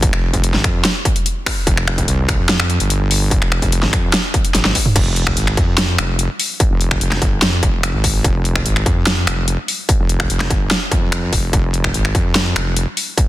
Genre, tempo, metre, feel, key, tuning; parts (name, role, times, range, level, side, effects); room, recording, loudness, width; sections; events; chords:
heavy wobble dubstep; 146 BPM; 4/4; half-time; F minor; A4 = 441 Hz
wobble bass; bass; 0.0-12.9 s; F1 to F2; -18 LUFS; equal; chorus, overdrive
dubstep drum kit; drums; 0.0-13.3 s; crash cymbal, finger snaps, hi-hat, snare drum, toms; -18 LUFS; equal
electronic kick drum; drums; 0.0-13.3 s; -18 LUFS; equal; distortion
digital ambience; dense, heavily limited modern master; -14 LUFS; side -15 dB against mid
0.0-5.0 A section; 5.0-13.3 A section
drop 0.0-5.0, 5.0-13.3; drum fill 4.5-5.0